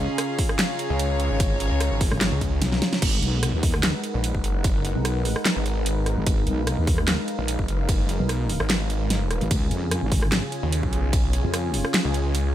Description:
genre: heavy wobble dubstep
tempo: 148 BPM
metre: 4/4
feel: half-time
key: G# dorian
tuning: A4 = 440 Hz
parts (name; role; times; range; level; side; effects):
- supersaw pad; sustained chords; 0.0-12.5 s; C#3 to A#5; -30 LUFS; equal; sidechain pumping, low-pass filter
- wobble bass; bass; 0.0-11.8 s; G#1 to E#2; -24 LUFS; equal; chorus, overdrive
- dark studio string section; texture; 0.0-3.0 s; C#4 to E#5; -30 LUFS; left 1 dB; sidechain pumping
- dubstep drum kit; drums; 0.2-12.4 s; crash cymbal, handclaps, hi-hat, ride cymbal, rim click, snare drum; -26 LUFS; right 1 dB; none
- electronic kick drum; drums; 0.4-11.2 s; none; -24 LUFS; equal; none
- snarling distorted saw bass; bass; 0.9-12.5 s; F#1 to D#2; -24 LUFS; equal; distortion, overdrive
room: digital ambience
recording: none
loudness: -21 LUFS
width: side -12 dB against mid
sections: 0.0-3.0 A section; 3.0-12.5 A section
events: drop 0.0-3.0, 3.0-12.5; drum fill 2.6-3.0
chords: 0.0 C#; 3.0 G#m7; 9.5 C#

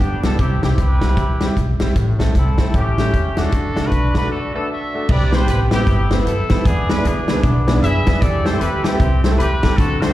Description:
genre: uptempo gospel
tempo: 154 BPM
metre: 4/4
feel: swing 61% on 8ths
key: unclear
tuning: A4 = 439 Hz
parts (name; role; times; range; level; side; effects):
- clear horn section; melody; 0.0-10.1 s; B3 to E5; -22 LUFS; equal; slapback echo
- clear baby grand piano; accompaniment; 0.0-10.1 s; G2 to D5; -24 LUFS; left 1 dB; slapback echo
- upright bass; bass; 0.0-10.1 s; G1 to F#2; -18 LUFS; equal; none
- natural country drum kit; drums; 0.0-10.1 s; crash cymbal, hi-hat, kick drum, snare drum; -19 LUFS; equal; none
room: small room ambience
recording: live gig heard through the venue's PA, recital hall reverb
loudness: -15 LUFS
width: side -14 dB against mid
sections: 0.0-5.1 A section; 5.1-10.1 B section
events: break 4.3-5.1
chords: 0.4 C; 2.0 Am; 2.7 A7; 3.5 D; 5.1 Cmaj7; 6.7 E7; 8.2 Am7

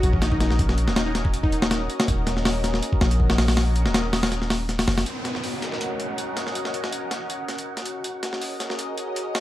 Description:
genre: drum and bass, jungle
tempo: 161 BPM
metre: 4/4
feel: swing 53% on 16ths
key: Eb minor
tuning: A4 = 441 Hz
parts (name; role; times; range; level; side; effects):
- plucky unison lead; melody; 0.0-1.8 s; Eb4 to Gb4; -30 LUFS; left 1 dB; dub echo
- lush unison pad; sustained chords; 0.0-9.4 s; Db4 to Eb5; -31 LUFS; equal; chorus, phaser, vintage 12-bit sampler grit
- long sustained 808-style bass; bass; 0.0-5.0 s; Eb1 to Bb1; -23 LUFS; equal; tube saturation
- breakbeat sampler-style drum kit; drums; 0.0-9.4 s; hi-hat, kick drum, snare drum; -24 LUFS; equal; high-pass filter on snare, high-pass filter on hats, high-pass filter on kick
- downlifter; sound effects; 5.1-8.0 s; none; -34 LUFS; equal; none
- wind-like tuned noise texture; texture; 5.7-9.4 s; Gb4 to Gb5; -34 LUFS; left 1 dB; built-in reverb
room: light reverb, digital ambience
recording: vinyl crackle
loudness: -21 LUFS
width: side -14 dB against mid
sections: 0.0-5.1 A section; 5.1-9.4 B section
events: none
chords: 0.0 Ebm7

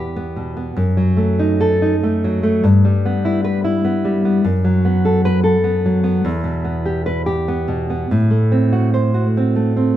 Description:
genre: romantic piece for solo classical guitar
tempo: 98 BPM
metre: 3/4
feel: rubato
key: E minor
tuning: A4 = 439 Hz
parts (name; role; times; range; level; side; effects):
- nylon-string guitar; solo; 0.0-10.0 s; E2 to C5; -15 LUFS; equal; none
room: moderate recital hall reverb, RT60 1.3 s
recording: close, detailed microphones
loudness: -15 LUFS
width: side -12 dB against mid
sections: 0.0-10.0 A section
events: none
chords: 0.0 Em; 0.8 D#dim/F#; 2.6 Em/G; 4.5 B5/F#; 6.3 Em; 8.1 F#dim/A

